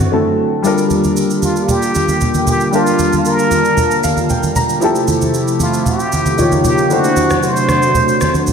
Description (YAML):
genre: amapiano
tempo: 115 BPM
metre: 4/4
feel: straight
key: G dorian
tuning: A4 = 440 Hz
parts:
  - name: trumpet with plunger mute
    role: melody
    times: 0.0-8.5 s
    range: F4 to C5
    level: -17 LUFS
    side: right 1 dB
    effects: analog delay
  - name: warm baby grand piano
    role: accompaniment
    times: 0.0-8.5 s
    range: D3 to Bb5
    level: -17 LUFS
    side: left 2 dB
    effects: wide subtle chorus
  - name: hollow soft pad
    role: sustained chords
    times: 0.0-8.5 s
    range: C3 to A5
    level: -18 LUFS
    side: right 1 dB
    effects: chorus
  - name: smooth R&B drum kit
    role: drums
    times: 0.0-8.5 s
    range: rim click, shaker, toms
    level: -23 LUFS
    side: right 3 dB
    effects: none
  - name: congas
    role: percussion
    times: 0.9-8.5 s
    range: none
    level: -20 LUFS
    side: right 2 dB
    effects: none
room: wet lush hall reverb, RT60 1.7 s, digital ambience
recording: dreamy mix soaked in reverb, faint mains hum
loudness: -12 LUFS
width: side -6 dB against mid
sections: 0.6-8.5 A section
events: drums muted 0.1-0.6; grand piano fill 3.8-4.8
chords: 0.0 D7; 0.6 Gm7; 4.8 Fmaj9; 6.4 Eb9; 6.9 D7